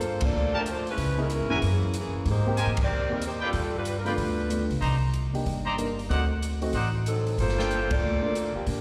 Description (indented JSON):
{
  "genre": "jazz, big band swing",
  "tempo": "187 BPM",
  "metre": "4/4",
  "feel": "swing 63% on 8ths",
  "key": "G minor",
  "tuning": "A4 = 440 Hz",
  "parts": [
    { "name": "mellow saxophone section", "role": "melody", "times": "0.0-4.7, 7.1-8.8 s", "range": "E3 to D5", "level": "-32 LUFS", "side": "equal", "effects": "slapback echo" },
    { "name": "upright bass", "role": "bass", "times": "0.0-8.8 s", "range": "G1 to Bb2", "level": "-30 LUFS", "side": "equal", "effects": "none" },
    { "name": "swinging big-band drum kit", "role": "drums", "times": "0.0-8.8 s", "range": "hi-hat, kick drum, ride cymbal, snare drum", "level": "-36 LUFS", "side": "equal", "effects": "none" },
    { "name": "warm baby grand piano", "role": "accompaniment", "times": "0.2-8.3 s", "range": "A3 to Bb4", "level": "-35 LUFS", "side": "equal", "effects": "slapback echo" },
    { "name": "brilliant trumpet section", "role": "stabs", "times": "0.5-8.0 s", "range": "Eb4 to Bb5", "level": "-35 LUFS", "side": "equal", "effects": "slapback echo" }
  ],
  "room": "light reverb",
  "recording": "live gig heard through the venue's PA, recital hall reverb",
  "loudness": "-27 LUFS",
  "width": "mono",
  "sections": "0.0-8.8 A section",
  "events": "band accent 0.2, 2.7, 7.9",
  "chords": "0.0 Gm9; 1.0 C#m7; 1.6 F#9; 2.3 Abmaj9; 3.5 G7; 4.8 Cm9; 6.1 D7b9; 7.4 Gm9",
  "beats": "0.01 0.33 0.65 | 0.97 1.29 1.61 1.94 | 2.25 2.58 2.90 3.22 | 3.54 3.86 4.18 4.50 | 4.82 5.14 5.46 5.78 | 6.10 6.42 6.74 7.06 | 7.38 7.70 8.03 8.35 | 8.67"
}